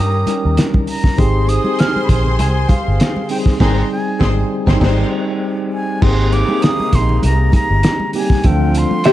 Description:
lush 1970s-style soul; 99 BPM; 4/4; swing 54% on 16ths; Ab major; A4 = 440 Hz
breathy concert flute; melody; 0.0-9.1 s; F5 to F6; -23 LUFS; right 1 dB; tape echo
warm studio string section; second line; 0.0-5.0 s; Bb4 to C6; -27 LUFS; left 3 dB
mellow tine electric piano; accompaniment; 0.0-9.1 s; E3 to Bb4; -20 LUFS; left 1 dB; medium stereo tremolo
mellow horn section; stabs; 0.0-9.1 s; C3 to Ab4; -27 LUFS; right 4 dB
vintage muted fingered electric bass; bass; 0.0-8.8 s; G1 to G2; -15 LUFS; equal
cloth-damped thuddy drum kit; drums; 0.3-9.1 s; crash cymbal, hi-hat, kick drum, snare drum; -16 LUFS; equal
congas; percussion; 0.3-9.0 s; -26 LUFS; right 2 dB
electric guitar through a small old amp; riff; 9.1 s; G4 to E5; -8 LUFS; equal; spring reverb
studio ambience; dark, warm production; -13 LUFS; side -14 dB against mid
0.0-6.0 A section; 6.0-9.1 A section
band accent 3.6-6.0
0.0 Eb7; 1.2 Abmaj9; 8.4 Dm7

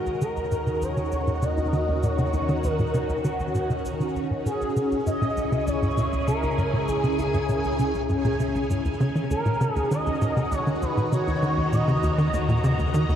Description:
ambient, sequencer-driven space music; 99 BPM; 4/4; straight; Eb phrygian; A4 = 439 Hz
expressive synth lead; melody; 0.0-12.3 s; Gb4 to Eb5; -28 LUFS; equal; ensemble chorus, ping-pong delay
phased string machine; sustained chords; 0.0-13.2 s; Db3 to Bb5; -28 LUFS; equal; ensemble chorus, phaser
tight sequencer bass; riff; 0.0-13.1 s; Db2 to Fb3; -26 LUFS; equal; ping-pong delay
analog drone; bass; 0.4-13.2 s; Db2 to Eb2; -31 LUFS; equal; chorus
cabasa and bongos; percussion; 0.1-13.2 s; -43 LUFS; right 1 dB; ping-pong delay
wet huge ambient reverb, RT60 7.5 s; worn, warbling old tape, cassette tape, warbly pitch drift; -22 LUFS; side -9 dB against mid
0.0-13.2 A section
filter sweep on analog synth bass 0.0-13.2
0.0 Ebm7; 4.5 Dbm; 9.3 Ebm7

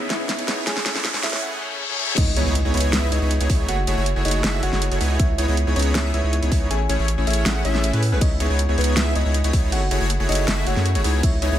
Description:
future bass; 159 BPM; 4/4; half-time; C# minor; A4 = 441 Hz
shimmering ambient pad; sustained chords; 0.0-1.4 s; C#3 to E4; -39 LUFS; left 2 dB
big bright polysynth; riff; 0.0-11.6 s; A3 to F#5; -26 LUFS; equal; sidechain pumping
riser, reverse cymbal and impact; sound effects; 0.0-3.7 s; -27 LUFS; left 2 dB
thumb-piano-like synth pluck; melody; 0.1-11.4 s; B3 to G#5; -29 LUFS; equal; chorus, sidechain pumping, tape echo
pop drum kit; drums; 0.1-11.5 s; crash cymbal, hi-hat, snare drum; -26 LUFS; equal
airy dreamy lead; arpeggios; 2.2-11.6 s; B4 to F#5; -30 LUFS; right 1 dB; chorus, sidechain pumping, digital delay
saturated sub bass; bass; 2.2-11.6 s; F#1 to A2; -21 LUFS; equal; sidechain pumping
electronic kick drum; drums; 2.2-11.3 s; -20 LUFS; equal
light reverb; high-pass filter; -18 LUFS; side -11 dB against mid
0.0-2.2 A section; 2.2-11.6 B section
build-up 0.0-2.2; drum fill 0.0-1.4; riser 0.0-1.4; filter sweep on analog polysynth 0.0-2.2; filter sweep 0.0-2.2; reverse cymbal 1.4-2.2; drop 2.2-11.6; impact 2.2-3.7
0.0 C#m9; 0.7 Amaj7; 2.2 C#m9; 3.7 F#m9; 5.0 C#m9; 6.7 Amaj7; 8.2 C#m9; 9.7 F#m9; 11.0 C#m9

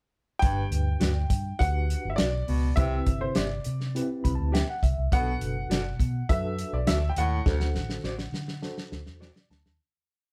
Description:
uptempo 1960s-style soul; 102 BPM; 4/4; straight; G major; A4 = 441 Hz
clear baby grand piano; melody; 0.4-9.5 s; C5 to G5; -35 LUFS; equal
tine electric piano; accompaniment; 0.4-9.8 s; G2 to B5; -36 LUFS; equal; medium tremolo
clear baritone saxophone; riff; 0.4-7.7 s; D2 to C3; -37 LUFS; equal
vintage muted fingered electric bass; bass; 0.4-9.8 s; F#1 to D3; -31 LUFS; equal
warm soul drum kit; drums; 0.4-9.8 s; hi-hat, kick drum, snare drum; -30 LUFS; equal
mellow electric guitar; stabs; 1.0-9.3 s; F#4 to E5; -37 LUFS; equal
light reverb; band playing live in one room; -27 LUFS; mono
0.4-9.8 verse
tine electric piano fill 3.9-5.1, 8.9-9.8; fade-out 7.5-9.8; drum fill 7.5-9.8
0.4 Gmaj7; 2.8 Cmaj7; 5.1 Bm7; 7.5 D7

